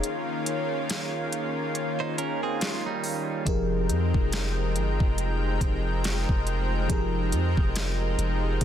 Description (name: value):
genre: contemporary R&B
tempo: 70 BPM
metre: 4/4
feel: swing 58% on 16ths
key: F minor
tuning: A4 = 439 Hz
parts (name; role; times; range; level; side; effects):
- FM electric piano with soft pad layer; accompaniment; 0.0-8.6 s; Eb3 to Db5; -32 LUFS; left 1 dB; chorus, phaser
- lush unison pad; sustained chords; 0.0-8.6 s; Eb3 to G5; -30 LUFS; equal; chorus
- smooth R&B drum kit; drums; 0.0-8.6 s; hi-hat, kick drum, snare drum; -28 LUFS; equal; none
- direct-recorded clean electric guitar; arpeggios; 2.0-3.4 s; G3 to C5; -32 LUFS; right 8 dB; phaser, digital delay
- long sustained 808-style bass; bass; 3.5-8.6 s; F1 to F2; -27 LUFS; equal; none
room: digital ambience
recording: dense, heavily limited modern master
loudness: -24 LUFS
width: side -10 dB against mid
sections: 0.0-3.5 A section; 3.5-8.6 B section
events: break 0.0-3.5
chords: 0.0 Eb7sus4; 3.5 Fm11